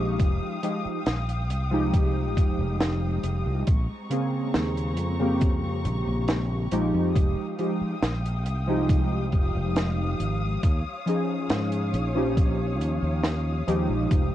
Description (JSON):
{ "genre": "vaporwave", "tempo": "69 BPM", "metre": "4/4", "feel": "straight", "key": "F minor", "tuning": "A4 = 440 Hz", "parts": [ { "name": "warbly lo-fi synth keys", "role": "accompaniment", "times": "0.0-14.3 s", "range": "Db3 to Ab4", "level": "-27 LUFS", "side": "equal", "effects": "analog chorus, tape echo" }, { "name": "dark chamber string section", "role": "sustained chords", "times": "0.0-14.3 s", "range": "Ab3 to Eb6", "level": "-35 LUFS", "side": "left 2 dB", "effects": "none" }, { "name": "fretless electric bass", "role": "bass", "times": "0.0-14.3 s", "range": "F1 to Ab2", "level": "-27 LUFS", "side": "equal", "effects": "none" }, { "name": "compact cocktail drum kit", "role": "drums", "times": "0.2-14.3 s", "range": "hi-hat, snare drum", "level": "-29 LUFS", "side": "right 1 dB", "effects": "none" }, { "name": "electronic kick drum", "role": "drums", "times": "0.2-14.3 s", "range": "none", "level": "-23 LUFS", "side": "equal", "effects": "none" } ], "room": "small room ambience", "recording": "dark, warm production, cassette tape", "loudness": "-23 LUFS", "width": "side -12 dB against mid", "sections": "0.0-14.3 A section", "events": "none", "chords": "0.2 Fm9; 3.7 Bbm9; 7.2 Fm9; 10.6 Eb9sus4" }